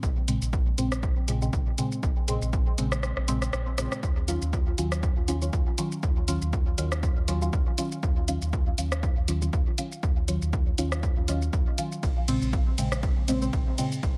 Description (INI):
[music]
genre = dub techno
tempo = 120 BPM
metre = 4/4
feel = swing 55% on 16ths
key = Eb dorian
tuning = A4 = 440 Hz
[part]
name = pure sine sub bass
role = bass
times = 0.0-14.2 s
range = Bb1 to Eb2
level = -32 LUFS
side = equal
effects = sidechain pumping
[part]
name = electronic kick drum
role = drums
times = 0.0-14.1 s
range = none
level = -29 LUFS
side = equal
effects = none
[part]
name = punchy analog drum machine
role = drums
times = 0.0-14.1 s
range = hi-hat, ride cymbal, rim click, shaker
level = -37 LUFS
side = equal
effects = dub echo
[part]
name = deep mellow chord stab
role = stabs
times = 0.3-14.0 s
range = Bb2 to F4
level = -33 LUFS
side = equal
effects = chorus, phaser, sidechain pumping, dub echo
[sound]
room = light reverb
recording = none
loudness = -27 LUFS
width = mono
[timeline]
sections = 0.0-14.2 A section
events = kick drops out 3.0-4.0; drum fill 3.0-4.0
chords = 0.0 Bbm9; 4.0 Ebm9; 12.0 Bbm9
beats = | 0.03 0.53 1.03 1.53 | 2.03 2.53 3.03 3.53 | 4.03 4.53 5.03 5.53 | 6.03 6.53 7.03 7.53 | 8.03 8.53 9.03 9.53 | 10.03 10.53 11.03 11.53 | 12.03 12.53 13.03 13.53 | 14.03